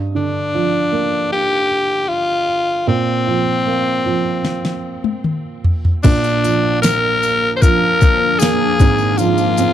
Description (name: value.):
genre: pop ballad.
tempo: 77 BPM.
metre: 4/4.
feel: straight.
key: unclear.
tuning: A4 = 440 Hz.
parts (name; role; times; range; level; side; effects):
felt-muted upright piano; accompaniment; 0.0-9.7 s; Ab1 to C4; -20 LUFS; right 6 dB; none.
raspy alto saxophone; melody; 0.2-9.7 s; C4 to C5; -17 LUFS; left 2 dB; none.
smooth R&B drum kit; drums; 4.4-9.7 s; crash cymbal, hi-hat, kick drum, snare drum, toms; -14 LUFS; left 1 dB; none.
granular cloud pad; sustained chords; 7.0-9.7 s; Ab2 to Bb4; -21 LUFS; left 3 dB; built-in reverb.
tambourine; percussion; 6.0-9.7 s; none; -31 LUFS; left 21 dB; none.
room: small room ambience.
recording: dry, close 1970s-style studio recording.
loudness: -14 LUFS.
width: side -10 dB against mid.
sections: 0.0-6.0 A section; 6.0-9.7 B section.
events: drum fill 4.4-6.0.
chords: 0.0 Gm7; 2.9 Bbsus2; 6.0 Bb; 8.8 Fm/Ab.